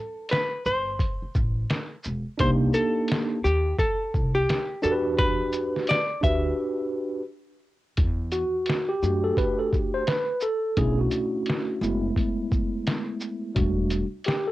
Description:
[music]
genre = hip hop, jazz-hop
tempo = 86 BPM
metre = 4/4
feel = swing 61% on 16ths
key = E minor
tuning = A4 = 442 Hz
[part]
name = hollow-body jazz guitar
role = melody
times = 0.0-7.6 s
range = G4 to E5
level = -26 LUFS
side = equal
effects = cassette tape, plate reverb
[part]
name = lo-fi sampler-style drum kit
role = drums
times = 0.3-14.5 s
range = hi-hat, kick drum, shaker, snare drum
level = -27 LUFS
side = equal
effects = cassette tape
[part]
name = upright bass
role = bass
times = 0.7-14.0 s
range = E1 to F#2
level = -27 LUFS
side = equal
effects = none
[part]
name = tine electric piano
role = accompaniment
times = 2.4-14.5 s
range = G3 to C5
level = -26 LUFS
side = equal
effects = medium stereo tremolo, cassette tape, plate reverb
[sound]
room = light reverb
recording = home recording on cassette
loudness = -23 LUFS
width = side -16 dB against mid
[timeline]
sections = 0.0-8.0 A section; 8.0-14.5 B section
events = break 6.6-8.0; tine electric piano solo 8.0-14.5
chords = 0.0 Am7; 2.4 Cm9; 4.8 Em9; 8.0 Em11; 10.8 Bm11; 11.8 F#m11; 13.6 Em11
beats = 0.30 1.00 1.70 | 2.40 3.09 3.79 4.49 | 5.19 5.88 6.58 7.28 | 7.98 8.68 9.37 10.07 | 10.77 11.47 12.16 12.86 | 13.56 14.26

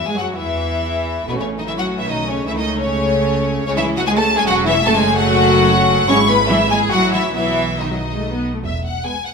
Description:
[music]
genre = quick classical-period movement for string orchestra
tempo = 148 BPM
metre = 3/4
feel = rubato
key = E major from 3.7 s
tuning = A4 = 440 Hz
[part]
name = clear studio violin section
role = melody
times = 0.0-9.3 s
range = B4 to C#6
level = -20 LUFS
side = left 3 dB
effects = none
[part]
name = warm symphonic cello section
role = bass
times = 0.0-9.0 s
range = E2 to C#4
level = -23 LUFS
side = right 3 dB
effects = none
[part]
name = warm symphonic double bass section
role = bass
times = 0.0-9.0 s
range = E1 to G#2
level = -24 LUFS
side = right 3 dB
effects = none
[part]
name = warm symphonic violin section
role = second line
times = 0.1-9.3 s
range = B3 to C#5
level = -21 LUFS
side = left 3 dB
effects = none
[part]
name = dark studio viola section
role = accompaniment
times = 0.1-9.3 s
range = D#3 to E4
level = -22 LUFS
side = equal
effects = none
[sound]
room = wet recital hall reverb, RT60 1.8 s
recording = minimal, uncompressed stereo recording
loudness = -14 LUFS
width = side -5 dB against mid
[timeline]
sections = 0.0-8.6 A section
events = none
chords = 0.1 Eadd9; 1.3 A; 2.5 A/C#; 3.7 C#m; 4.9 F#m; 6.1 E/G#; 6.9 F#m7/A; 7.3 B; 8.6 E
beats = | 0.06 0.47 0.88 | 1.28 1.68 2.08 | 2.48 2.87 3.27 | 3.67 4.07 4.46 | 4.87 5.27 5.68 | 6.09 6.50 6.91 | 7.35 7.79 8.21 | 8.64 9.05

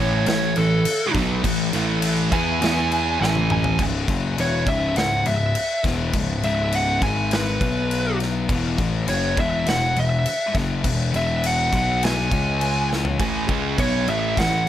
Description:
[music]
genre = stoner and doom metal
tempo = 102 BPM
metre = 4/4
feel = straight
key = C# minor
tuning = A4 = 440 Hz
[part]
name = fuzz lead guitar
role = melody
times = 0.0-14.7 s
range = A4 to G#5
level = -24 LUFS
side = right 1 dB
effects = distortion, digital delay
[part]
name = fuzz guitar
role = riff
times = 0.0-3.8 s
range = A2 to E4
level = -31 LUFS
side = right 1 dB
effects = none
[part]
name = thick fuzz guitar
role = riff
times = 0.0-14.6 s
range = C#2 to E4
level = -24 LUFS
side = left 4 dB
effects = distortion
[part]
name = thick fuzz guitar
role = riff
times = 0.0-3.8, 13.2-14.6 s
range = A2 to E4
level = -25 LUFS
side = right 10 dB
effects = distortion
[part]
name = fuzz picked electric bass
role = bass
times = 0.0-14.6 s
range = C#1 to E2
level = -27 LUFS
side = right 1 dB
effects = overdrive
[part]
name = big rock drum kit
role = drums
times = 0.3-14.5 s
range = crash cymbal, kick drum, snare drum, toms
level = -26 LUFS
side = equal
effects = none
[sound]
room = light reverb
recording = none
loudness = -19 LUFS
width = side -11 dB against mid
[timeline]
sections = 0.0-3.8 A section; 3.8-14.7 B section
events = lead electric guitar solo 0.0-3.8; drum fill 3.2-3.8, 12.9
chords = 0.0 A5; 2.6 E5; 3.2 A5; 3.8 C#m; 7.0 G#5; 7.6 B5; 8.5 E5; 11.7 B5; 12.3 C#5; 13.2 A5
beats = 0.28 0.86 | 1.45 2.04 2.62 3.21 | 3.79 4.38 4.97 5.56 | 6.14 6.73 7.32 7.91 | 8.50 9.09 9.67 10.26 | 10.85 11.44 12.03 12.62 | 13.20 13.79 14.38

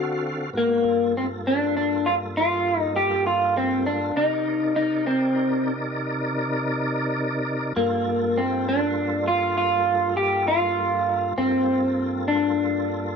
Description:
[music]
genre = blues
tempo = 66 BPM (dotted quarters)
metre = 12/8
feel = straight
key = G minor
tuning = A4 = 441 Hz
[part]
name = electric guitar through a small old amp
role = melody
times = 0.0-13.2 s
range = Bb3 to G4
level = -21 LUFS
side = equal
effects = wide subtle chorus, plate reverb
[part]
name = tonewheel organ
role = sustained chords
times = 0.0-13.2 s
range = G2 to E#5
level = -28 LUFS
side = equal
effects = slow rotary speaker, overdrive, chorus vibrato, plate reverb
[sound]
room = wet studio ambience, RT60 0.5 s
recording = none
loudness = -21 LUFS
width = side -6 dB against mid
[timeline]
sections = 0.5-13.2 A section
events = none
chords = 0.0 D7#9; 0.5 Gm7; 4.2 Cm7; 7.8 Gm7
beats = | 0.55 1.45 2.35 3.25 | 4.16 5.06 5.96 6.86 | 7.76 8.66 9.57 10.47 | 11.37 12.27

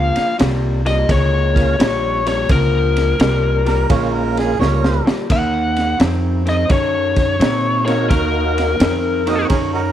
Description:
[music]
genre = electric blues shuffle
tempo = 86 BPM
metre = 4/4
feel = swing 66% on 8ths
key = Bb minor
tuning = A4 = 438 Hz
[part]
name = biting lead guitar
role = melody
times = 0.0-9.5 s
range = Bb4 to Gb5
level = -19 LUFS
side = left 4 dB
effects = overdrive, slapback echo, plate reverb
[part]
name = electric guitar through a small old amp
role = riff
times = 0.0-9.9 s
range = Bb2 to Db4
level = -22 LUFS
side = left 1 dB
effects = none
[part]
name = upright bass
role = bass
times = 0.0-9.9 s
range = Bb1 to Bb2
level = -20 LUFS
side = equal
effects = none
[part]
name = crunchy breakbeat drum kit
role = drums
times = 0.2-9.7 s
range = kick drum, ride cymbal, snare drum, splash cymbal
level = -20 LUFS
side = equal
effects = none
[part]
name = tonewheel organ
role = accompaniment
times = 1.5-9.5 s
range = Bb3 to Bb4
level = -23 LUFS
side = right 5 dB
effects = slow rotary speaker, overdrive, chorus vibrato, plate reverb
[part]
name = mellow harmonica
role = second line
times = 3.7-5.1, 9.3-9.9 s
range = Eb4 to Eb5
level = -22 LUFS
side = right 6 dB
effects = plate reverb
[sound]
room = light reverb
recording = none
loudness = -14 LUFS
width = side -10 dB against mid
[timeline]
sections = 0.0-9.9 A section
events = drum fill 4.6-5.3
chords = 0.0 Bbm; 5.3 Ebm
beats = 0.39 1.09 1.79 | 2.49 3.19 3.89 4.60 | 5.30 6.00 6.70 7.40 | 8.10 8.80 9.51

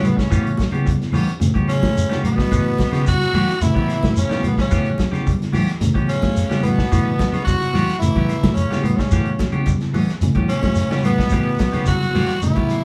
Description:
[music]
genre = afrobeat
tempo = 109 BPM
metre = 4/4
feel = straight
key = A mixolydian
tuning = A4 = 438 Hz
[part]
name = growling tenor saxophone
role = melody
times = 0.0-12.8 s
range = B3 to F#4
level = -27 LUFS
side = equal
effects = none
[part]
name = bright trumpet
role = second line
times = 0.0-12.8 s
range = B3 to F#4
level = -32 LUFS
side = equal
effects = none
[part]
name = mellow trombone section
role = second line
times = 0.0-12.8 s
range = B2 to F#3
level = -32 LUFS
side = equal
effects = none
[part]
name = mellow tine electric piano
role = accompaniment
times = 0.0-12.8 s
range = C#3 to E4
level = -28 LUFS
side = equal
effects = overdrive
[part]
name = electric guitar at the edge of break-up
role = arpeggios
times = 0.0-12.5 s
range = C#3 to G3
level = -29 LUFS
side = equal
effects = none
[part]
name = clean electric guitar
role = stabs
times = 0.0-12.7 s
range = E3 to G4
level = -32 LUFS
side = equal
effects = none
[part]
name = fingered electric bass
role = bass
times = 0.0-12.8 s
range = A2 to C#3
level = -24 LUFS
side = equal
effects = none
[part]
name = vintage drum kit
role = drums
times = 0.0-12.8 s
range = hi-hat, kick drum, snare drum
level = -26 LUFS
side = equal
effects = none
[part]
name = claves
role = percussion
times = 0.0-12.8 s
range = none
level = -43 LUFS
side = equal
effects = none
[part]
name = congas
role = percussion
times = 0.0-12.7 s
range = none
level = -29 LUFS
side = equal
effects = none
[part]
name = shekere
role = percussion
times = 0.0-12.8 s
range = none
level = -27 LUFS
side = equal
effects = none
[sound]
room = moderate studio reverb, RT60 0.8 s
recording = band playing live in one room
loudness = -19 LUFS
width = mono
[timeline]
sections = 0.0-12.8 A section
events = none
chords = 0.0 A9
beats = | 0.31 0.86 1.41 1.96 | 2.51 3.06 3.61 4.16 | 4.71 5.26 5.81 6.36 | 6.92 7.47 8.02 8.57 | 9.12 9.67 10.22 10.78 | 11.33 11.88 12.43

